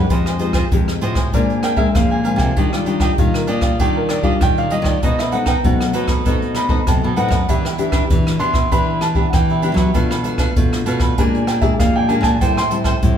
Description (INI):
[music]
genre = samba and choro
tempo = 98 BPM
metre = 4/4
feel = straight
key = unclear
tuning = A4 = 437 Hz
[part]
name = cavaquinho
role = accompaniment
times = 0.0-13.0 s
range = D4 to Ab5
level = -24 LUFS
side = right 2 dB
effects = none
[part]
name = nylon-string guitar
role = accompaniment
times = 0.0-13.2 s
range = F2 to G4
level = -22 LUFS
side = left 6 dB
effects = none
[part]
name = nylon-string guitar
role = bass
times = 0.0-13.2 s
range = F2 to F#3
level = -21 LUFS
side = equal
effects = none
[part]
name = jazz brush drum kit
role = drums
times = 0.1-13.2 s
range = hi-hat, kick drum, rim click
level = -18 LUFS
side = right 1 dB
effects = none
[part]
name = dark concert grand piano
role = melody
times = 1.3-12.7 s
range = Bb4 to C6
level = -22 LUFS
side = right 1 dB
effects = none
[sound]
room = wet large studio reverb, RT60 1.3 s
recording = band playing live in one room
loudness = -14 LUFS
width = side -8 dB against mid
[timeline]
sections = 0.0-13.2 A section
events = grand piano solo 0.0-13.2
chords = 0.1 Fm9; 1.3 Bb9; 2.6 Ebmaj9; 5.0 B7b9; 7.5 Em7; 10.0 Bm7b5; 11.2 Bb6; 12.4 Am7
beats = | 0.10 0.72 1.33 1.95 | 2.57 3.18 3.80 4.41 | 5.03 5.64 6.26 6.88 | 7.49 8.11 8.72 9.34 | 9.95 10.57 11.18 11.80 | 12.41 13.03